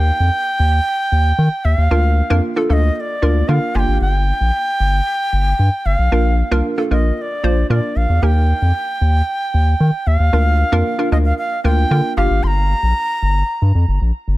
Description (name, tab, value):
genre	dance-pop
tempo	114 BPM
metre	4/4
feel	straight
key	Bb major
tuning	A4 = 440 Hz
part	bright reedy bansuri	melody	0.0-14.0 s	D5 to C6	-20 LUFS	right 1 dB	none
part	hollow square pluck	accompaniment	0.0-13.1 s	Bb3 to C5	-21 LUFS	right 1 dB	chorus
part	round analog bass	bass	0.0-14.4 s	G1 to Eb3	-14 LUFS	equal	none
room	small room ambience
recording	none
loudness	-14 LUFS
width	side -17 dB against mid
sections	0.0-14.4 A section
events	none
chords	0.0 Eb; 1.9 Bb/D; 3.8 Gm7; 6.1 Bb; 8.2 Eb; 10.3 Bb/D; 12.2 Gm7